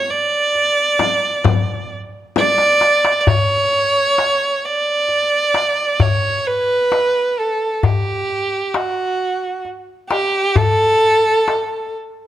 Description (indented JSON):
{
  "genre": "Arabic maqam ensemble",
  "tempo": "132 BPM (eighths)",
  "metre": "10/8",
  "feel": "straight",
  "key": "D maqam ajam from 3.3 s",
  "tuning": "A4 = 441 Hz",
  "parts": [
    { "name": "rich violin", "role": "melody", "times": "0.0-11.9 s", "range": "F#4 to D5", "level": "-15 LUFS", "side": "right 1 dB", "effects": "none" },
    { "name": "darbuka", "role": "percussion", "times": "0.1-11.7 s", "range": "none", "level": "-19 LUFS", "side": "left 4 dB", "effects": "none" },
    { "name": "frame drum", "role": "percussion", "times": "1.0-2.6 s", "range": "none", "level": "-23 LUFS", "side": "left 5 dB", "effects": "none" }
  ],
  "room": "light reverb",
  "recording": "close, detailed microphones",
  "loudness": "-14 LUFS",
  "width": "side -12 dB against mid",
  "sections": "0.0-3.3 A section; 3.3-12.3 B section",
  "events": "drum fill 2.4-3.3",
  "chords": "none"
}